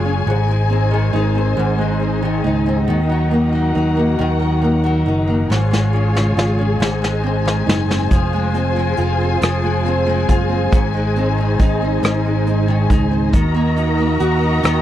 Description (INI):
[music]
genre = six-eight pop ballad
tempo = 46 BPM (dotted quarters)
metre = 6/8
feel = straight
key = unclear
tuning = A4 = 445 Hz
[part]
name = nylon-string guitar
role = accompaniment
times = 0.0-14.8 s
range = Ab2 to Gb4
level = -19 LUFS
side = right 1 dB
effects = double-tracked left and right
[part]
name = warm studio string section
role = sustained chords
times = 0.0-14.8 s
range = Eb4 to Bb5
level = -22 LUFS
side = left 2 dB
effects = none
[part]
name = fingered electric bass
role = bass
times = 0.0-14.8 s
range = F1 to Eb2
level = -18 LUFS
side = equal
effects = none
[part]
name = vintage brush drum kit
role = drums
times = 5.5-14.8 s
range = hi-hat, kick drum, rim click, snare drum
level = -17 LUFS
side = equal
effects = none
[sound]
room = small room ambience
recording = dry, close 1970s-style studio recording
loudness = -14 LUFS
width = side -12 dB against mid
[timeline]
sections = 0.0-14.8 A section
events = drum fill 5.5-8.1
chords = 0.3 Ab; 2.9 Ebm; 5.5 Db/Ab; 6.8 Ab; 8.1 Fm; 10.7 Ab; 13.3 Ebm